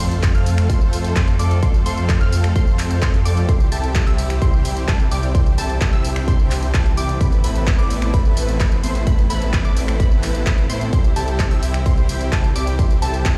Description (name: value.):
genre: EDM, festival progressive house.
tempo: 129 BPM.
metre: 4/4.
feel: straight.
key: C major.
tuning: A4 = 440 Hz.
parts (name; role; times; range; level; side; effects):
clear studio string section; sustained chords; 0.0-13.4 s; C3 to B4; -33 LUFS; equal; sidechain pumping.
unison pluck; arpeggios; 0.0-13.3 s; A5 to F6; -34 LUFS; equal; sidechain pumping, digital delay.
big supersaw lead; riff; 0.0-13.3 s; G3 to F5; -29 LUFS; equal; sidechain pumping, digital delay.
detuned saw bass; bass; 0.0-13.3 s; A1 to A2; -23 LUFS; equal; sidechain pumping.
big-room dance drum kit; drums; 0.0-13.3 s; finger snaps, handclaps, hi-hat, tambourine; -31 LUFS; equal; none.
impact; sound effects; 0.0-1.6 s; none; -33 LUFS; equal; none.
electronic kick drum; drums; 0.2-13.3 s; none; -19 LUFS; equal; none.
room: little or no reverb.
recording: played on a big sound system in a bare room, stone room reverb.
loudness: -18 LUFS.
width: mono.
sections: 0.0-13.4 A section.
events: impact 0.0-1.6.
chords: 0.0 F; 3.5 C; 7.2 Amadd9; 10.9 C.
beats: 0.23 0.70 1.16 | 1.63 2.09 2.56 3.02 | 3.49 3.95 4.42 4.88 | 5.35 5.81 6.28 6.74 | 7.21 7.67 8.14 8.60 | 9.07 9.53 10.00 10.46 | 10.93 11.39 11.86 12.32 | 12.79 13.25.